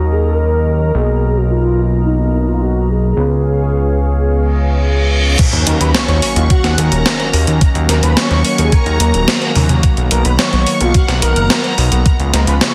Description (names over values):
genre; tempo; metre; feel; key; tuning
synthwave; 108 BPM; 4/4; straight; Eb minor; A4 = 441 Hz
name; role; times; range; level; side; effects
expressive synth lead; melody; 0.0-12.7 s; D#4 to Db5; -23 LUFS; equal; ensemble chorus, tape echo
warm analog pad; sustained chords; 0.0-12.7 s; Db3 to Db6; -23 LUFS; equal; chorus, sidechain pumping
analog synth brass; stabs; 0.0-5.4 s; Gb3 to Cb5; -26 LUFS; equal; chorus, tape echo
fat analog bass; bass; 0.0-12.6 s; Eb1 to Eb2; -16 LUFS; equal; none
reverse cymbal and sub drop; sound effects; 4.5-7.6 s; none; -25 LUFS; equal; none
electronic kick drum; drums; 5.4-12.2 s; none; -14 LUFS; equal; none
gated 80s digital drum machine; drums; 5.4-12.7 s; crash cymbal, hi-hat, snare drum, toms; -18 LUFS; equal; gated reverb, gated reverb snare, low-pass filter on hats, low-pass filter on cymbals, low-pass filter on snare, low-pass filter on toms, low-pass filter on room
string machine, violins; second line; 5.7-12.7 s; F5 to Db6; -26 LUFS; equal; ensemble chorus, tape echo
room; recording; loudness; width
light reverb; dense, heavily limited modern master; -14 LUFS; mono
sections
0.0-5.4 A section; 5.4-12.7 B section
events
reverse cymbal 4.5-5.4; impact 5.4-7.6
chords
0.0 Ebm7; 0.9 Bmaj7; 3.2 Db7; 5.4 Ebm7; 9.8 Bmaj7; 12.1 Db7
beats
0.39 | 0.95 1.50 2.06 2.61 | 3.17 3.72 4.28 4.83 | 5.39 5.95 6.50 7.06 | 7.61 8.17 8.72 9.28 | 9.84 10.39 10.95 11.50 | 12.06 12.61